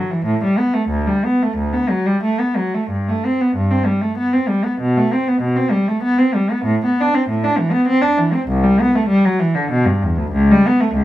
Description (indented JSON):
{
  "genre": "classical, baroque-style suite movement for unaccompanied cello",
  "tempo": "86-102 BPM",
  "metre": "3/4",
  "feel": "rubato",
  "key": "G major",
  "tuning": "A4 = 440 Hz",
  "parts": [
    { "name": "warm cello", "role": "solo", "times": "0.0-11.0 s", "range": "C2 to D4", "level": "-14 LUFS", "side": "equal", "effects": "none" }
  ],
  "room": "light reverb",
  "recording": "minimal, uncompressed stereo recording",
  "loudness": "-14 LUFS",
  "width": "side -14 dB against mid",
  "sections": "0.0-2.9 A section; 2.9-11.0 A section",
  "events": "none",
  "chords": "none",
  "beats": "0.24 | 0.89 1.55 2.20 | 2.89 3.55 4.17 | 4.79 5.41 6.01 | 6.65 7.27 7.86 | 8.47 9.08 9.69 | 10.32 10.94"
}